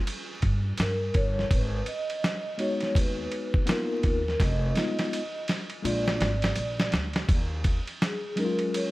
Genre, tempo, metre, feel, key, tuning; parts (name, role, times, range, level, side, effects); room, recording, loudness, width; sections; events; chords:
hip hop, jazz-hop; 83 BPM; 4/4; swing 61% on 16ths; Eb minor; A4 = 440 Hz
dusty soul sampler-style drum kit; drums; 0.1-8.9 s; hi-hat, kick drum, ride cymbal, snare drum; -28 LUFS; equal
upright bass; bass; 0.4-7.8 s; F1 to G2; -30 LUFS; equal
vibraphone with soft mallets; melody; 0.8-8.9 s; Ab4 to Eb5; -32 LUFS; equal; analog delay
tine electric piano; accompaniment; 2.6-8.9 s; Gb3 to Gb4; -32 LUFS; left 2 dB; medium stereo tremolo
little or no reverb; dark, warm production, vinyl crackle; -25 LUFS; side -19 dB against mid
0.0-7.3 A section; 7.3-8.9 B section
drum fill 4.4-7.3; vibraphone solo 7.3-8.9
0.0 Eb7 (rootless); 1.5 Abm9; 4.4 Fm7b5; 5.8 Bb7; 7.3 Ebm11